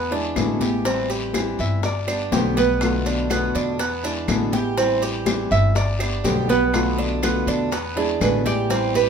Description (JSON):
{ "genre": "latin, Cuban son and guajira", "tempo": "122 BPM", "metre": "4/4", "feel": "straight", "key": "unclear", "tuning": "A4 = 440 Hz", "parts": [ { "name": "Cuban tres", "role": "arpeggios", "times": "0.0-9.1 s", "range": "B3 to G4", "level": "-24 LUFS", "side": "right 4 dB", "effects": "none" }, { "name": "upright bass", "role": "bass", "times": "0.0-9.1 s", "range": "G1 to E2", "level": "-26 LUFS", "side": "equal", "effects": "none" }, { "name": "flamenco guitar", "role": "accompaniment", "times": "0.1-9.1 s", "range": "B2 to G4", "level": "-25 LUFS", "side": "left 3 dB", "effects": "none" }, { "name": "bongos", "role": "percussion", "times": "0.1-9.1 s", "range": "none", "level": "-31 LUFS", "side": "left 4 dB", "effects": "none" }, { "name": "congas", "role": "percussion", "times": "0.1-9.1 s", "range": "none", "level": "-29 LUFS", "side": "left 7 dB", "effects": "none" }, { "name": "claves", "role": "percussion", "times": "0.4-8.5 s", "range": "none", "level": "-36 LUFS", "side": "right 2 dB", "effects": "none" }, { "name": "guiro", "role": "percussion", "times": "0.4-9.1 s", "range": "none", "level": "-35 LUFS", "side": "left 5 dB", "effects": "none" }, { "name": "maracas", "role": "percussion", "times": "0.4-9.1 s", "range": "none", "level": "-36 LUFS", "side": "right 2 dB", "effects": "none" }, { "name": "nylon-string guitar", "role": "melody", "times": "1.6-9.1 s", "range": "G#4 to E5", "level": "-23 LUFS", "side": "right 7 dB", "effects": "none" } ], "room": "moderate large studio reverb, RT60 1.1 s", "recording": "minimal, uncompressed stereo recording", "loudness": "-19 LUFS", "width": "side -6 dB against mid", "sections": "0.0-9.1 A section", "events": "nylon-string guitar solo 0.0-9.1; drum fill 4.5", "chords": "0.0 E7; 0.9 Am7; 1.8 G; 2.8 Bm7b5; 3.8 E7; 4.8 Am7; 5.8 G; 6.7 Bm7b5; 7.7 E7" }